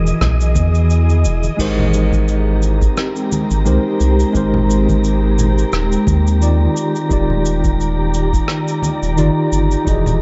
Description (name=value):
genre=sunset chillout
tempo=87 BPM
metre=4/4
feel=swing 55% on 16ths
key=Ab lydian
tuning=A4 = 440 Hz
part: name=tine electric piano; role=accompaniment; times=0.0-10.2 s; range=Eb3 to D#5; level=-22 LUFS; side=equal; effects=digital delay, shimmer reverb
part: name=ethereal airy pad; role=sustained chords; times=0.0-10.2 s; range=Eb3 to D#5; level=-24 LUFS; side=equal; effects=ensemble chorus, built-in reverb, phaser, shimmer reverb
part: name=round analog bass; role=bass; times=0.0-10.2 s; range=Eb1 to E2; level=-18 LUFS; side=equal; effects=none
part: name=wind-like tuned noise texture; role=texture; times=0.0-10.2 s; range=Eb5 to Bb5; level=-30 LUFS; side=equal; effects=built-in reverb, shimmer reverb
part: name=vintage brush drum kit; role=drums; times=0.1-10.2 s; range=cabasa, crash cymbal, rim click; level=-29 LUFS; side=equal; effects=none
part: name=electronic kick drum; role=drums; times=0.2-10.0 s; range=none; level=-22 LUFS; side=equal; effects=none
part: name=congas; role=percussion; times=0.2-10.2 s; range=none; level=-26 LUFS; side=equal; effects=none
room=light reverb, studio reverb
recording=dark, warm production, nothing above 7.8 kHz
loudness=-16 LUFS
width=mono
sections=0.0-10.2 A section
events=kick drops out 0.9-1.6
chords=0.0 Emaj7; 1.6 Abmaj9; 6.8 Ebmaj7